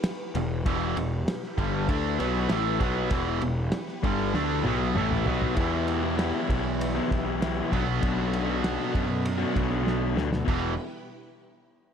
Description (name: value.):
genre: classic rock.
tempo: 98 BPM.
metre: 4/4.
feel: straight.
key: E minor.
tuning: A4 = 440 Hz.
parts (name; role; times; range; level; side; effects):
string machine, full ensemble; sustained chords; 0.0-10.9 s; B3 to B4; -37 LUFS; equal; ensemble chorus.
cloth-damped thuddy drum kit; drums; 0.0-10.6 s; crash cymbal, kick drum, ride cymbal, snare drum, toms; -31 LUFS; equal; none.
fuzz picked electric bass; bass; 0.3-10.8 s; E1 to F#2; -30 LUFS; equal; overdrive.
overdriven electric guitar; riff; 0.4-10.7 s; E2 to D4; -30 LUFS; right 11 dB; none.
overdriven semi-hollow guitar; riff; 0.4-10.7 s; E2 to G4; -30 LUFS; left 11 dB; none.
room: light reverb, studio ambience.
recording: none.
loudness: -24 LUFS.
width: side -8 dB against mid.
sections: 0.0-5.6 A section; 5.6-10.5 B section; 10.5-11.9 C section.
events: drum fill 4.3-5.6, 9.9-10.5.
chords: 0.0 Em; 7.7 Bm7; 10.5 Em.